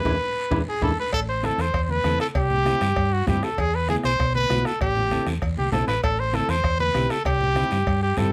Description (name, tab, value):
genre	latin, cumbia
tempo	196 BPM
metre	4/4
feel	straight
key	A dorian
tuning	A4 = 440 Hz
part	clear trumpet	melody	0.0-8.3 s	F#4 to C5	-26 LUFS	equal	none
part	guiro	percussion	0.0-8.3 s	none	-42 LUFS	equal	none
part	breathy clarinet	second line	0.1-0.9 s	E4	-34 LUFS	equal	none
part	mellow electric guitar	accompaniment	0.1-8.3 s	B3 to A4	-32 LUFS	equal	warbly pitch drift
part	hollow-body short-scale fingered electric bass	bass	0.1-8.3 s	A1 to G2	-28 LUFS	equal	none
part	bombo	percussion	0.1-8.3 s	none	-32 LUFS	equal	none
part	congas	percussion	0.1-8.3 s	none	-35 LUFS	equal	none
part	timbales and cowbell	percussion	0.1-8.0 s	none	-36 LUFS	equal	none
room	light reverb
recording	none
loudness	-23 LUFS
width	mono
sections	0.0-1.1 A section; 1.1-8.3 B section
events	band accent 0.0-1.1; drum fill 0.2-1.1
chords	0.0 E7; 1.1 Am; 2.4 C; 3.6 E; 4.8 Am; 7.3 C